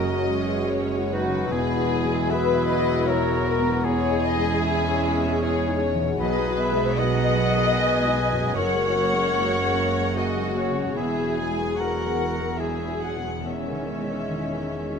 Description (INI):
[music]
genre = cinematic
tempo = 76 BPM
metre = 3/4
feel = rubato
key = unclear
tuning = A4 = 440 Hz
[part]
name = warm symphonic violin section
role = melody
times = 0.0-15.0 s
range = B4 to G#5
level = -30 LUFS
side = left 6 dB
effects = none
[part]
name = dark studio violin section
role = second line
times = 0.0-15.0 s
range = C#4 to D#5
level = -28 LUFS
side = left 3 dB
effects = none
[part]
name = mellow hollow silver concert flute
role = second line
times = 0.0-15.0 s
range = C#5 to D#6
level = -33 LUFS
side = equal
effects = none
[part]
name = warm clarinet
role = second line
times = 0.0-15.0 s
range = G#3 to B4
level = -31 LUFS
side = left 1 dB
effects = none
[part]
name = warm oboe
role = second line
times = 0.0-15.0 s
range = C#4 to D#5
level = -34 LUFS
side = right 1 dB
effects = none
[part]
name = warm chamber viola section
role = accompaniment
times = 0.0-15.0 s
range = D#3 to E4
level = -32 LUFS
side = right 2 dB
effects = none
[part]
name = warm grand piano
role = accompaniment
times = 0.0-15.0 s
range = B1 to E5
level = -31 LUFS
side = left 2 dB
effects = none
[part]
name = mellow French horn section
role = sustained chords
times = 0.0-15.0 s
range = D#3 to G#4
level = -32 LUFS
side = left 3 dB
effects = none
[part]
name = concert harp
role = arpeggios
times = 0.0-15.0 s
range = E2 to C#5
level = -36 LUFS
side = left 9 dB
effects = none
[part]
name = dark symphonic double bass section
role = bass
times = 0.0-15.0 s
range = E1 to B1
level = -30 LUFS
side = right 5 dB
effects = none
[part]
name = warm symphonic cello section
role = bass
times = 0.0-15.0 s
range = E2 to B2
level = -31 LUFS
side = right 4 dB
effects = none
[sound]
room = moderate scoring stage reverb, RT60 1.6 s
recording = close, detailed microphones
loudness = -21 LUFS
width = side -6 dB against mid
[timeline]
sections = 0.0-15.0 A section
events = none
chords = 0.0 F#add9; 1.5 Eadd9; 3.8 C#madd9/E; 6.2 B6; 8.6 F#add9; 11.0 Eadd9; 13.4 C#madd9/E